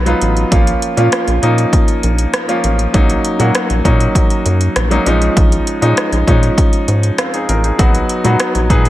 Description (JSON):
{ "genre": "1980s-style pop", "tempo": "99 BPM", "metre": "4/4", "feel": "straight", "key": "Bb minor", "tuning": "A4 = 439 Hz", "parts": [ { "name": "clear concert grand piano", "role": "accompaniment", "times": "0.0-8.9 s", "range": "F3 to B4", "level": "-15 LUFS", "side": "equal", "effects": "none" }, { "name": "rubbery square bass", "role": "bass", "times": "0.0-8.9 s", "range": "A1 to Bb2", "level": "-15 LUFS", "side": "equal", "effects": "none" }, { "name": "80s electronic pad drums", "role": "drums", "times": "0.1-8.9 s", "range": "hi-hat, kick drum, rim click", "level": "-15 LUFS", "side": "equal", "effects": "gated reverb" } ], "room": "light reverb, digital ambience", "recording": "none", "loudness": "-11 LUFS", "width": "side -15 dB against mid", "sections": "0.0-8.9 A section", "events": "none", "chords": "0.0 B; 0.5 Bbm; 2.9 Ebm7/Bb; 5.1 Dbadd9/Bb; 7.8 B/Bb" }